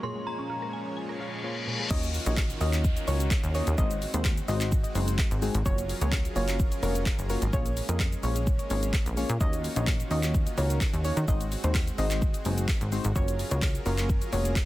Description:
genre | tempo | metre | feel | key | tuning
dance-pop | 128 BPM | 4/4 | straight | unclear | A4 = 440 Hz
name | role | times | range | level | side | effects
synth chime | melody | 0.0-0.7 s | Bb5 to C6 | -37 LUFS | equal | ensemble chorus, digital delay
soft electric-piano-like synth keys | accompaniment | 0.0-14.6 s | Ab3 to Eb5 | -35 LUFS | left 1 dB | chorus, sidechain pumping
supersaw pad | sustained chords | 0.0-14.7 s | Bb2 to Db5 | -38 LUFS | equal | sidechain pumping
mallet-like synth pluck | arpeggios | 0.0-1.9 s | Bb2 to Ab5 | -40 LUFS | equal | chorus, phaser, sidechain pumping, digital delay
reverse cymbal and downlifter | sound effects | 1.1-5.7 s | none | -37 LUFS | left 2 dB | none
soft round pluck | melody | 1.9-14.4 s | Bb4 to Eb5 | -36 LUFS | equal | chorus, sidechain pumping, digital delay
plucky analog bass | bass | 1.9-14.6 s | F1 to Eb3 | -28 LUFS | equal | sidechain pumping
deep house drum kit | drums | 1.9-14.7 s | crash cymbal, handclaps, hi-hat, kick drum, shaker, snare drum | -28 LUFS | equal | none
tambourine | percussion | 9.9-14.7 s | none | -47 LUFS | right 7 dB | none
room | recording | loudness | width
little or no reverb | dense, heavily limited modern master | -25 LUFS | side -16 dB against mid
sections
0.0-1.9 A section; 1.9-14.7 B section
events
reverse cymbal 1.1-1.9; drop 1.9-14.7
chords
0.0 Bbm7; 1.9 Ebm7; 3.8 Ab7; 5.7 Gbmaj7; 7.5 Bbm7; 9.4 Ebm7; 11.3 Ab7; 13.2 Gbmaj7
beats
| 0.03 0.50 0.97 1.44 | 1.91 2.38 2.84 3.31 | 3.78 4.25 4.72 5.19 | 5.66 6.12 6.59 7.06 | 7.53 8.00 8.47 8.94 | 9.41 9.88 10.34 10.81 | 11.28 11.75 12.22 12.69 | 13.16 13.62 14.09 14.56

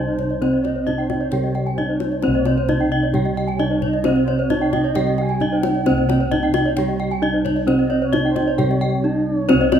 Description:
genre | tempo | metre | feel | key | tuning
Balinese gamelan | 132 BPM | 4/4 | straight | C pelog | A4 = 440 Hz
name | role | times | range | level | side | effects
gamelan-type bronze metallophone | melody | 0.0-9.8 s | C4 to G4-30c | -22 LUFS | right 1 dB | none
xiao | second line | 0.0-9.8 s | C5 to Ab5 | -28 LUFS | right 3 dB | none
gamelan-type bronze metallophone | accompaniment | 0.0-9.8 s | C3 to G3-30c | -27 LUFS | right 6 dB | none
gamelan-type bronze metallophone | arpeggios | 0.0-9.8 s | C5 to G5-30c | -25 LUFS | left 6 dB | none
gamelan-type bossed gongs | bass | 0.0-9.8 s | C2 to Db4+20c | -22 LUFS | equal | none
gamelan-type bronze metallophone | arpeggios | 0.1-9.7 s | C5 to Ab5-20c | -28 LUFS | right 6 dB | none
kendang | percussion | 0.2-9.8 s | none | -27 LUFS | left 7 dB | none
room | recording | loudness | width
moderate recital hall reverb, RT60 1.6 s | minimal, uncompressed stereo recording | -17 LUFS | side -8 dB against mid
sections
0.0-9.8 A section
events
break 8.8-9.5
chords
none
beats
| 0.41 0.87 1.32 1.78 | 2.23 2.69 3.14 3.59 | 4.05 4.50 4.96 5.41 | 5.86 6.32 6.77 7.22 | 7.68 8.13 8.59 9.04 | 9.49

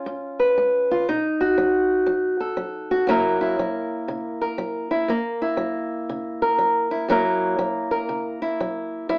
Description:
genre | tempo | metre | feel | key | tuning
blues | 120 BPM | 4/4 | swing 64% on 8ths | F# mixolydian | A4 = 440 Hz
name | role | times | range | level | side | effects
fingerpicked old ladder-braced acoustic guitar | solo | 0.0-9.2 s | F#2 to B4 | -23 LUFS | equal | none
room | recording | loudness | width
wet studio reverb, RT60 0.5 s | heard from further back in the room, AM radio sound | -23 LUFS | mono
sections
0.0-7.1 A section; 7.1-9.2 B section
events
none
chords
0.0 C#7; 1.1 B7; 3.1 F#7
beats
0.08 0.58 | 1.08 1.58 2.08 2.58 | 3.08 3.58 4.08 4.58 | 5.08 5.58 6.08 6.58 | 7.08 7.58 8.08 8.58 | 9.08

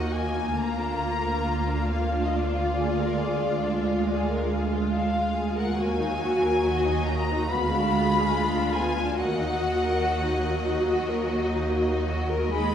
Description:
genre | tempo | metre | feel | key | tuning
classical, slow romantic movement for string orchestra | 71 BPM | 4/4 | uneven beats, rubato | Eb minor | A4 = 440 Hz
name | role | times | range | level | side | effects
warm symphonic violin section | melody | 0.0-12.7 s | D5 to B5 | -30 LUFS | left 3 dB | none
rich symphonic violin section | second line | 0.0-12.7 s | Ab3 to F5 | -30 LUFS | left 2 dB | none
rich studio viola section | accompaniment | 0.0-12.7 s | Gb3 to Gb4 | -27 LUFS | equal | none
clear symphonic cello section | bass | 0.0-12.7 s | D2 to Eb2 | -32 LUFS | right 4 dB | none
clear symphonic double bass section | bass | 0.0-12.7 s | D2 to Eb2 | -31 LUFS | right 1 dB | none
room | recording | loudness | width
wet recital hall reverb, RT60 1.6 s | heard from further back in the room | -23 LUFS | side -9 dB against mid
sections
0.0-12.7 A section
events
none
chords
0.0 Ebm; 0.6 Bb/D; 2.3 Bb7/D; 5.8 Ebm; 7.5 Ddim7; 9.2 Ebm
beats
0.56 1.45 | 2.33 3.21 4.09 4.95 | 5.80 6.66 7.52 8.35 | 9.19 10.02 10.87 11.70 | 12.52

